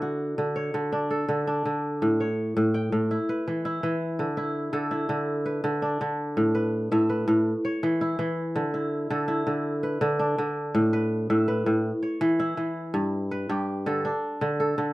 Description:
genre	west african traditional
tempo	110 BPM (dotted quarters)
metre	12/8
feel	straight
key	D major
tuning	A4 = 439 Hz
part	kora	solo	0.0-14.9 s	G2 to G5	-24 LUFS	equal	none
room	moderate studio reverb, RT60 0.6 s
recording	rough home demo mix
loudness	-24 LUFS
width	side -18 dB against mid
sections	0.0-4.2 A section; 4.2-12.9 B section; 12.9-14.9 C section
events	none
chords	0.0 D; 2.0 A; 3.1 Em; 4.2 D5; 6.4 A5; 7.5 E5; 8.6 D5; 10.7 A5; 11.8 E5; 12.9 G; 14.0 D5

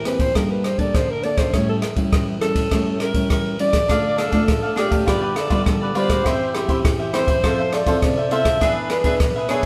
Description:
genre	samba and choro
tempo	102 BPM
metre	4/4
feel	straight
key	unclear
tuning	A4 = 440 Hz
part	breathy alto saxophone	melody	0.0-9.7 s	G4 to E5	-25 LUFS	equal	none
part	nylon-string guitar	accompaniment	0.0-9.7 s	A2 to A4	-26 LUFS	equal	none
part	open jazz drum kit	drums	0.1-9.7 s	kick drum, ride cymbal, rim click	-24 LUFS	equal	none
part	cavaquinho	accompaniment	3.9-9.7 s	D4 to F5	-26 LUFS	equal	none
room	moderate stone room reverb, RT60 1.1 s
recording	band playing live in one room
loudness	-20 LUFS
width	mono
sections	0.0-9.7 A section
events	alto saxophone solo 0.0-9.7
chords	0.4 Gmadd9; 1.5 A7; 3.9 Dm; 5.1 G7/D; 6.3 C/E; 7.4 Fmaj7; 8.6 E7

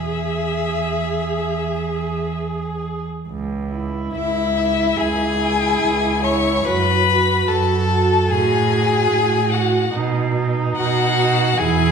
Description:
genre	classical, slow romantic movement for string quartet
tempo	63-74 BPM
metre	4/4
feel	rubato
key	unclear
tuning	A4 = 440 Hz
part	rich violin	melody	0.0-11.9 s	E5 to C#6	-22 LUFS	left 7 dB	none
part	rich violin	second line	0.0-11.9 s	E4 to C#5	-23 LUFS	left 3 dB	none
part	rich viola	accompaniment	0.0-11.9 s	D#4 to G#4	-24 LUFS	right 4 dB	none
part	rich cello	bass	0.0-11.9 s	C#2 to B2	-22 LUFS	right 4 dB	none
room	wet recital hall reverb, RT60 1.8 s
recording	recorded in a church or concert hall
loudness	-17 LUFS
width	side -6 dB against mid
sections	0.0-3.3 A section; 3.3-11.9 B section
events	none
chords	0.0 E; 3.3 C#m; 6.7 F#m; 8.3 F#m/A; 9.9 B

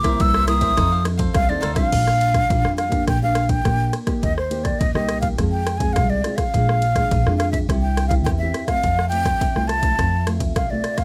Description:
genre	samba and choro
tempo	104 BPM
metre	4/4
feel	straight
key	Bb major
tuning	A4 = 442 Hz
part	breathy mellow silver concert flute	melody	0.0-11.0 s	C5 to E6	-24 LUFS	equal	none
part	cavaquinho	accompaniment	0.0-1.9 s	Eb4 to F5	-33 LUFS	equal	none
part	nylon-string guitar	accompaniment	0.0-11.0 s	F2 to A4	-29 LUFS	equal	none
part	upright bass	bass	0.0-10.8 s	Bb1 to F2	-25 LUFS	equal	none
part	punchy analog drum machine	drums	0.0-11.0 s	crash cymbal, kick drum, ride cymbal, rim click	-26 LUFS	equal	none
room	light reverb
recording	none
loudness	-20 LUFS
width	mono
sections	0.0-1.9 A section; 1.9-11.0 B section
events	flute solo 0.0-1.9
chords	0.0 C7; 0.8 F7; 1.9 Bb6; 3.1 Gm/Bb; 4.2 Eb; 5.4 Fm; 6.5 Bb7; 7.7 C; 8.8 F

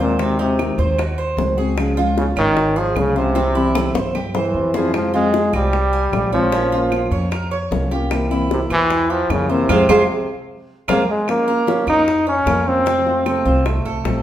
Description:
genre	latin, Cuban son and guajira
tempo	152 BPM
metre	4/4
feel	straight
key	F minor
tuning	A4 = 443 Hz
part	bright trombone	melody	0.0-14.2 s	Bb2 to Eb4	-18 LUFS	equal	none
part	fingerpicked steel-string acoustic guitar	accompaniment	0.0-14.2 s	C3 to Gb4	-23 LUFS	left 3 dB	none
part	Cuban tres	arpeggios	0.0-14.2 s	C4 to Ab5	-23 LUFS	right 3 dB	none
part	upright bass	bass	0.0-14.2 s	Ab1 to G2	-23 LUFS	equal	none
part	bongos	percussion	0.0-14.2 s	none	-26 LUFS	left 4 dB	none
part	claves	percussion	0.6-13.9 s	none	-32 LUFS	right 4 dB	none
room	wet large studio reverb, RT60 1.2 s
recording	band playing live in one room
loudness	-15 LUFS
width	side -11 dB against mid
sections	0.0-11.3 A section; 11.3-14.2 B section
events	drum fill 3.4-4.9; band accent 9.7-11.3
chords	0.2 Ab7/Eb; 1.8 Db; 3.4 C; 4.9 Fm; 6.5 Bbm; 8.1 C7; 9.7 Fm; 11.3 Bbm; 12.9 F

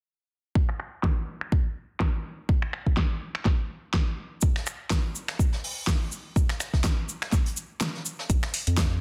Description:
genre	deep house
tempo	124 BPM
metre	4/4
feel	swing 55% on 16ths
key	unclear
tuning	A4 = 440 Hz
part	electronic kick drum	drums	0.6-8.9 s	none	-26 LUFS	equal	studio reverb
part	deep house drum kit	drums	0.7-8.9 s	finger snaps, hi-hat, snare drum	-33 LUFS	equal	low-pass filter on snare, studio reverb, low-pass filter on hats
part	vintage brush drum kit	drums	4.4-8.9 s	hi-hat, shaker, snare drum	-38 LUFS	equal	high-pass filter on hats, studio reverb, soft clipping on snare, high-pass filter on snare, high-pass filter on perc, high-pass filter on room
part	round analog bass	bass	8.3-9.0 s	Bb1 to F2	-28 LUFS	equal	sidechain pumping
room	small room ambience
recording	dense, heavily limited modern master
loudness	-28 LUFS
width	mono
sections	0.6-8.3 A section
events	filter sweep on drum 0.6-8.3; break 7.8-8.3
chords	none

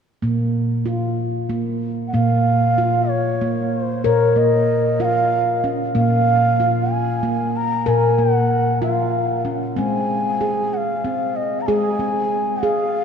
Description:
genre	world meditative, meditative tuned percussion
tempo	63 BPM (dotted quarters)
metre	6/8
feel	straight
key	Bb minor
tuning	A4 = 440 Hz
part	handpan	arpeggios	0.2-13.0 s	Bb2 to Bb4	-19 LUFS	equal	none
part	breathy mellow bansuri	melody	2.1-13.0 s	C5 to Bb5	-21 LUFS	right 1 dB	tape echo
room	wet cathedral reverb, RT60 5.4 s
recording	in a vast, echoing space, cassette tape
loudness	-17 LUFS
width	side -7 dB against mid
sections	0.2-2.1 A section; 2.1-13.0 B section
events	none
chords	0.2 Bb5; 9.8 Ab

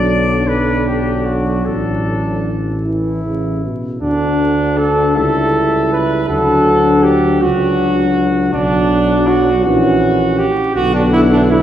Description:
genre	classical, brass quintet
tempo	50-54 BPM (dotted quarters)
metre	6/8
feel	rubato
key	D major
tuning	A4 = 437 Hz
part	clear trumpet	melody	0.0-11.6 s	F#4 to F#5	-24 LUFS	left 3 dB	none
part	clear trumpet	second line	0.0-11.6 s	D4 to B4	-17 LUFS	right 2 dB	none
part	mellow trombone	accompaniment	0.0-11.6 s	B2 to G3	-20 LUFS	right 1 dB	none
part	warm French horn	accompaniment	0.0-11.6 s	E3 to E4	-19 LUFS	left 2 dB	none
part	mellow bass trombone	bass	0.0-11.6 s	A1 to D2	-18 LUFS	equal	none
room	wet concert hall reverb, RT60 1.9 s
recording	heard from further back in the room, vinyl crackle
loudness	-12 LUFS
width	side -10 dB against mid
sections	0.0-4.0 A section; 4.0-11.6 B section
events	none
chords	0.0 Bm; 1.6 D/A; 2.8 A; 4.0 D; 5.2 A7/C#; 6.3 D; 8.5 Bm; 9.7 F#7/A#; 10.8 Bm

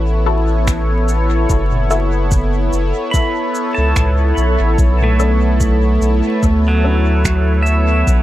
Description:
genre	ambient dub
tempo	73 BPM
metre	4/4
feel	swing 55% on 16ths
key	B minor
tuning	A4 = 441 Hz
part	warm analog pad	sustained chords	0.0-8.2 s	B3 to C#5	-19 LUFS	left 1 dB	chorus
part	round analog bass	bass	0.0-8.2 s	F#1 to D2	-15 LUFS	equal	none
part	filtered dub chord stab	stabs	0.3-7.1 s	C#4 to A4	-26 LUFS	left 5 dB	phaser, dub echo
part	electronic kick drum	drums	0.7-8.2 s	none	-17 LUFS	equal	none
part	organic electronic drum kit	drums	0.7-8.2 s	finger snaps, shaker, toms	-26 LUFS	right 1 dB	dub echo
part	pedal steel guitar	arpeggios	3.1-8.2 s	F#3 to B5	-20 LUFS	right 2 dB	dub echo
room	light reverb, digital ambience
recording	vinyl crackle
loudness	-12 LUFS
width	side -14 dB against mid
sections	0.0-8.2 A section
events	none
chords	0.0 F#m7; 4.8 Bm9

